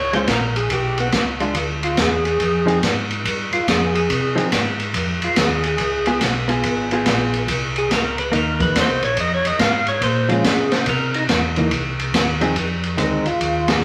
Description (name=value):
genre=soul jazz organ trio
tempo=142 BPM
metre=4/4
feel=swing 65% on 8ths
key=F minor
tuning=A4 = 439 Hz
part: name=percussive tonewheel organ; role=melody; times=0.0-13.8 s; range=B3 to F5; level=-24 LUFS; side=equal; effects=overdrive, slow rotary speaker
part: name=mellow tonewheel organ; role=bass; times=0.0-13.8 s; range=Ab1 to Db3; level=-27 LUFS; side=equal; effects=chorus vibrato, slow rotary speaker
part: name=hollow-body jazz guitar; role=accompaniment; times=0.1-13.2 s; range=Eb3 to Ab4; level=-25 LUFS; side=equal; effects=none
part: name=open jazz drum kit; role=drums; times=0.1-13.8 s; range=hi-hat, kick drum, ride cymbal, snare drum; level=-22 LUFS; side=equal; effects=none
room=moderate large studio reverb, RT60 1.2 s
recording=vinyl crackle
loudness=-19 LUFS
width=mono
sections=0.0-12.6 A section; 12.6-13.8 B section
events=tonewheel organ solo 0.0-12.6; band accent 13.6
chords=0.0 Bbm7; 0.7 Bm6; 2.4 Fm7; 5.8 Db7; 7.5 C7#9; 9.2 Fm; 10.0 Bbm7; 10.9 C7#9; 12.6 Fm7